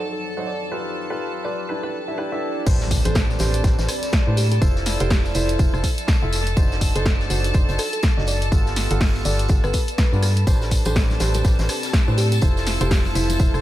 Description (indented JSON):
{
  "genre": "piano house",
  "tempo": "123 BPM",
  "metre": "4/4",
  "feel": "swing 58% on 16ths",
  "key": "A minor",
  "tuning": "A4 = 437 Hz",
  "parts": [
    { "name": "bell-like FM electric piano", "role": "melody", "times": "0.0-13.6 s", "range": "E4 to D5", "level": "-31 LUFS", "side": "equal", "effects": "chorus, dub echo" },
    { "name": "rich studio violin section", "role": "sustained chords", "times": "0.0-13.6 s", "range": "A4 to A5", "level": "-30 LUFS", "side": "left 1 dB", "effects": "sidechain pumping" },
    { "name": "deep dark ambient pad", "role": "texture", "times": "0.0-13.6 s", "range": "F3 to C6", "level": "-34 LUFS", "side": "left 1 dB", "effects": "chorus, built-in reverb, sidechain pumping" },
    { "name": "dark grand piano", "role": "riff", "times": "0.4-13.6 s", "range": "F#3 to F#5", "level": "-29 LUFS", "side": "right 2 dB", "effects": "sidechain pumping, dub echo" },
    { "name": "organ-like FM bass", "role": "bass", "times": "2.7-13.6 s", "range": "F1 to A2", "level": "-22 LUFS", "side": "equal", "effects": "sidechain pumping" },
    { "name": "electronic kick drum", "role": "drums", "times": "2.7-13.5 s", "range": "none", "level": "-19 LUFS", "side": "equal", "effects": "none" },
    { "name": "loose indie drum kit", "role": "drums", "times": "2.7-13.5 s", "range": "hi-hat, snare drum, tambourine", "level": "-37 LUFS", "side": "equal", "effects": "none" },
    { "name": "punchy analog drum machine", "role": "drums", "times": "2.7-13.6 s", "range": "crash cymbal, hi-hat, rim click, snare drum, tambourine", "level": "-27 LUFS", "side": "equal", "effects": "dub echo" },
    { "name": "impact", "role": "sound effects", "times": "2.7-4.6 s", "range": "none", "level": "-31 LUFS", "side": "equal", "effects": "none" },
    { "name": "tambourine and congas", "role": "percussion", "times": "10.5-13.6 s", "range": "none", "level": "-34 LUFS", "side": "left 3 dB", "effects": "dub echo" }
  ],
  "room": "small room reverb",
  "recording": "echo-heavy mix",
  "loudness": "-18 LUFS",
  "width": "side -14 dB against mid",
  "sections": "0.0-2.7 A section; 2.7-13.6 B section",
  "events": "drop 2.7-13.6; impact 2.7-4.6",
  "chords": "0.0 D7b9/F#; 0.7 G9; 1.7 Em7; 2.7 Am11; 4.6 Fmaj7; 6.6 D7b9/F#; 8.5 G9; 10.5 Am11; 12.4 Fmaj7"
}